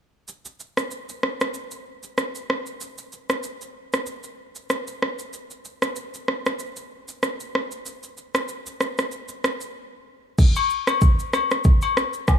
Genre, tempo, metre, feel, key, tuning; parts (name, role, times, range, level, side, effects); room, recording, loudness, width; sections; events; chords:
afrobeats; 95 BPM; 4/4; swing 55% on 16ths
afro-pop drum kit; drums; 0.3-12.4 s; crash cymbal, kick drum, rim click, shaker; -22 LUFS; equal
agogo bells and woodblock; percussion; 10.6-12.4 s; -23 LUFS; left 7 dB
light reverb; small room ambience; -22 LUFS; side -9 dB against mid
0.3-10.4 A section; 10.4-12.4 B section
break 9.8-10.4